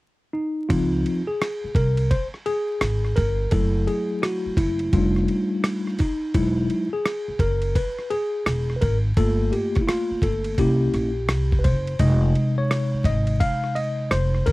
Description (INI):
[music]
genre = hip hop, jazz-hop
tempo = 85 BPM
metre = 4/4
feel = swing 66% on 16ths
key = unclear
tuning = A4 = 440 Hz
[part]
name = mellow tine electric piano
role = accompaniment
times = 0.3-14.5 s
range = C3 to F5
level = -23 LUFS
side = left 1 dB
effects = medium stereo tremolo
[part]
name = upright bass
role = bass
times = 0.7-14.5 s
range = E1 to Db2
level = -23 LUFS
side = equal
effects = none
[part]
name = dusty soul sampler-style drum kit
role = drums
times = 0.7-14.5 s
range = hi-hat, kick drum, ride cymbal, rim click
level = -25 LUFS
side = equal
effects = overdrive
[sound]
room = little or no reverb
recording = dry, close 1970s-style studio recording, vinyl crackle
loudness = -20 LUFS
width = side -20 dB against mid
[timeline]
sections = 0.7-14.5 A section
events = tine electric piano solo 0.7-14.5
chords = 0.0 N.C.; 0.7 Dbmaj9 (rootless); 3.5 Gbm7; 4.9 F13; 6.3 Emaj9; 9.2 Gm7; 10.6 C7b9; 12.0 Fm7